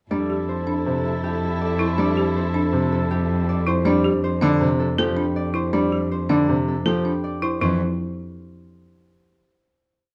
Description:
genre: classical, minimalist pattern music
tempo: 160 BPM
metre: 5/4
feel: straight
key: F major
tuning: A4 = 440 Hz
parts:
  - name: concert harp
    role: melody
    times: 0.1-9.5 s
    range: G4 to D5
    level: -32 LUFS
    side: equal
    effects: none
  - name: warm oboe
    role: second line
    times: 0.1-3.6 s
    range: A4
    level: -35 LUFS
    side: equal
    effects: none
  - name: clear grand piano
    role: accompaniment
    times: 0.1-7.8 s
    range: C3 to G3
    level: -26 LUFS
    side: equal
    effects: none
  - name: warm studio string section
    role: sustained chords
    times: 0.1-3.6 s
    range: E4 to A4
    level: -33 LUFS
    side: equal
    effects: none
  - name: folk marimba with hard mallets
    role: arpeggios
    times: 0.1-7.8 s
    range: D4 to A4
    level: -27 LUFS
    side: equal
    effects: none
  - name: warm cello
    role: bass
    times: 0.1-7.8 s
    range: F2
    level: -27 LUFS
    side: equal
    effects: none
room: light reverb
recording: dark, warm production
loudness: -22 LUFS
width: mono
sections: 0.1-7.6 A section; 7.6-9.5 final chord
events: none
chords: 0.1 Fmaj9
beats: | 0.11 0.48 0.86 1.23 1.61 | 1.98 2.36 2.73 3.11 3.48 | 3.86 4.23 4.61 4.98 5.36 | 5.73 6.11 6.48 6.86 7.23 | 7.61 7.98 8.36 8.73 9.11

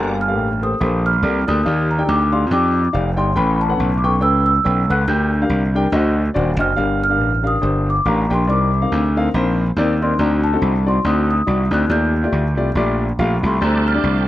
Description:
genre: uptempo gospel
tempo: 140 BPM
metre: 4/4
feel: swing 58% on 8ths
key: G minor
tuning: A4 = 440 Hz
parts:
  - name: large celesta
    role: melody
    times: 0.0-14.3 s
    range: A5 to G6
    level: -21 LUFS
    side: equal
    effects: none
  - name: warm grand piano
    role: accompaniment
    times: 0.0-14.2 s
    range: G2 to G5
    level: -21 LUFS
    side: left 2 dB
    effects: none
  - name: bright tonewheel organ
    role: sustained chords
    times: 0.0-0.2, 13.6-14.3 s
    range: G3 to D5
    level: -23 LUFS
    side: right 2 dB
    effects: fast rotary speaker, overdrive, chorus vibrato
  - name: gritty slap bass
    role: bass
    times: 0.0-14.3 s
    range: Eb1 to F2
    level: -18 LUFS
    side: equal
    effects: overdrive
room: light reverb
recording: rough home demo mix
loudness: -15 LUFS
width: side -14 dB against mid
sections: 0.0-14.3 A section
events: none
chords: 0.0 Gm9; 1.7 Ebmaj9; 3.4 A9; 5.1 Gm/D; 5.9 D7b9; 6.8 Gm7; 8.5 Cm9; 10.2 D7b9; 11.9 Ebmaj9#11; 13.6 D7sus4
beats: 0.37 0.80 1.23 | 1.66 2.08 2.51 2.94 | 3.37 3.79 4.22 4.65 | 5.08 5.50 5.93 6.36 | 6.78 7.21 7.64 8.06 | 8.49 8.92 9.34 9.77 | 10.20 10.62 11.05 11.48 | 11.90 12.33 12.76 13.19 | 13.61 14.04

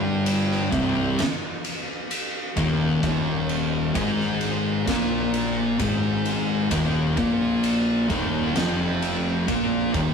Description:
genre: stoner and doom metal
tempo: 65 BPM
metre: 4/4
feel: straight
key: unclear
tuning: A4 = 440 Hz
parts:
  - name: thick fuzz guitar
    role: riff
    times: 0.0-10.1 s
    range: C2 to Bb3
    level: -24 LUFS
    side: left 5 dB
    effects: distortion
  - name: thick fuzz guitar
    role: riff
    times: 0.0-10.1 s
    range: C2 to Bb3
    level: -27 LUFS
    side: right 5 dB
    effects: distortion
  - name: fuzz fingered electric bass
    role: bass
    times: 0.0-10.1 s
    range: C1 to Bb1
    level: -29 LUFS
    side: right 2 dB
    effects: overdrive
  - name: oversized low-tuned drum kit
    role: drums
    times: 0.3-10.1 s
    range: kick drum, ride cymbal, snare drum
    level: -29 LUFS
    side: right 1 dB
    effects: none
room: moderate stone room reverb, RT60 1.2 s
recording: rough rehearsal-room recording, warm saturation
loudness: -21 LUFS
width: side -6 dB against mid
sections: 0.0-10.1 A section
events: none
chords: 0.0 Cm; 3.0 Eb5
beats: 0.27 1.19 2.11 | 3.03 3.95 4.87 5.80 | 6.72 7.64 8.56 9.48

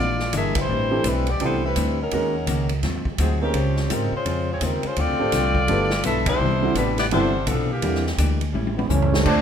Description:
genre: jazz, big band swing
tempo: 168 BPM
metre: 4/4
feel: swing 62% on 8ths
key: unclear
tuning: A4 = 444 Hz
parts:
  - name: warm saxophone section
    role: melody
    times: 0.0-8.1 s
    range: E3 to E5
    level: -24 LUFS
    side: left 2 dB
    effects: none
  - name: hollow-body jazz guitar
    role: accompaniment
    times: 0.0-9.4 s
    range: G2 to G4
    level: -29 LUFS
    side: left 4 dB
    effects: none
  - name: upright bass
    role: bass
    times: 0.0-9.4 s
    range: G1 to Ab2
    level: -24 LUFS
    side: right 1 dB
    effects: none
  - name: swinging big-band drum kit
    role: drums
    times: 0.2-9.4 s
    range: crash cymbal, hi-hat, kick drum, ride cymbal, snare drum, toms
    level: -28 LUFS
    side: equal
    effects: none
  - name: warm grand piano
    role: accompaniment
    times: 0.9-9.2 s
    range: D3 to C5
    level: -26 LUFS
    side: right 3 dB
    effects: none
  - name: clear trombone section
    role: second line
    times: 8.8-9.4 s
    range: C#3 to D4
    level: -23 LUFS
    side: right 3 dB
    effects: none
room: moderate large studio reverb, RT60 0.9 s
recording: minimal, uncompressed stereo recording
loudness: -19 LUFS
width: side -8 dB against mid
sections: 0.0-9.3 A section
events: band accent 0.5, 6.2; drum fill 8.5-9.3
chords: 0.0 Bb7#11; 0.7 Am11; 2.1 Ebm7; 2.8 Ab13; 3.5 Dbmaj7; 5.0 Dm7; 5.7 G13; 6.4 Cmaj9; 7.8 Em7b5; 8.5 A7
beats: 0.33 | 0.69 1.04 1.40 1.76 | 2.12 2.47 2.83 3.19 | 3.54 3.90 4.26 4.61 | 4.97 5.33 5.68 6.04 | 6.40 6.75 7.11 7.47 | 7.83 8.18 8.54 8.90 | 9.25

